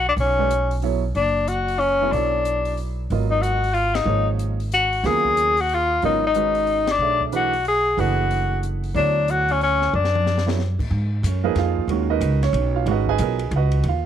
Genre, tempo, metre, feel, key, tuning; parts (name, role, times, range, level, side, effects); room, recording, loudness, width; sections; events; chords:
modal jazz; 184 BPM; 3/4; swing 63% on 8ths; G# dorian; A4 = 440 Hz
clear tenor saxophone; melody; 0.0-10.6 s; C#4 to G#4; -20 LUFS; left 3 dB
upright bass; bass; 0.0-14.1 s; F#1 to A2; -23 LUFS; equal
open jazz drum kit; drums; 0.2-13.9 s; crash cymbal, hi-hat, kick drum, ride cymbal, snare drum, toms; -35 LUFS; left 5 dB
warm baby grand piano; accompaniment; 0.4-14.1 s; C#3 to G#5; -26 LUFS; right 14 dB
light reverb; 1960s-style stereo; -18 LUFS; side -9 dB against mid
0.0-10.9 A section; 10.9-14.1 B section
band accent 3.9, 6.8; drum fill 9.9-10.6
0.0 Bm9; 3.1 G#m9; 7.0 Bm9; 10.9 G#m9